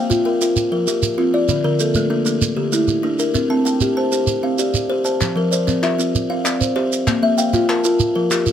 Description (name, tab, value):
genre	southern african traditional, mbira-style interlocking cycle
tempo	129 BPM (dotted quarters)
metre	12/8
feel	straight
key	F major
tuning	A4 = 439 Hz
part	buzzing kalimba	arpeggios	0.0-8.5 s	D3 to A5	-18 LUFS	left 3 dB	slapback echo
part	kalimba	arpeggios	0.0-8.5 s	D3 to A5	-21 LUFS	right 2 dB	none
part	shekere	percussion	0.1-8.5 s	none	-22 LUFS	right 5 dB	none
part	group handclap	percussion	5.2-8.5 s	none	-25 LUFS	left 3 dB	none
room	moderate studio reverb, RT60 0.6 s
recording	close, detailed microphones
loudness	-16 LUFS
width	side -9 dB against mid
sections	0.0-5.2 A section; 5.2-8.5 B section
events	none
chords	0.0 Bb5; 0.6 F5; 1.5 Dm; 3.4 C5; 5.2 F; 6.1 C; 7.1 Bb5; 8.0 F